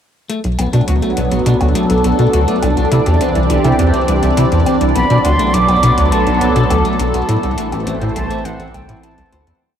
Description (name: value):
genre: ambient, sequencer-driven space music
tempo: 103 BPM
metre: 4/4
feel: straight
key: B phrygian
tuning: A4 = 439 Hz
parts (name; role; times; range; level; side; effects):
- phased analog pad; sustained chords; 0.8-9.6 s; E3 to D5; -16 LUFS; right 1 dB; phaser, chorus
- electric guitar at the edge of break-up; arpeggios; 0.3-9.5 s; A3 to C5; -22 LUFS; left 2 dB; auto-pan, ping-pong delay
- warm sub bass; bass; 0.3-9.6 s; A1 to C2; -25 LUFS; equal; tube saturation
- electronic hi-hat and woodblock; percussion; 0.3-9.6 s; none; -29 LUFS; left 2 dB; ping-pong delay
- tight sequencer bass; riff; 0.4-9.5 s; A1 to C3; -16 LUFS; equal; lush chorus, ping-pong delay
- concert flute; melody; 5.0-9.5 s; F#5 to D6; -18 LUFS; equal; ping-pong delay
room: wet huge ambient reverb, RT60 7.8 s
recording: dreamy mix soaked in reverb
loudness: -12 LUFS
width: side -9 dB against mid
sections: 0.3-9.6 A section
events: fade-in on sub bass 0.3-9.6; fade-out 6.5-9.6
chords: 0.3 Bm7; 2.6 Cadd9; 5.0 Bm7; 7.3 Am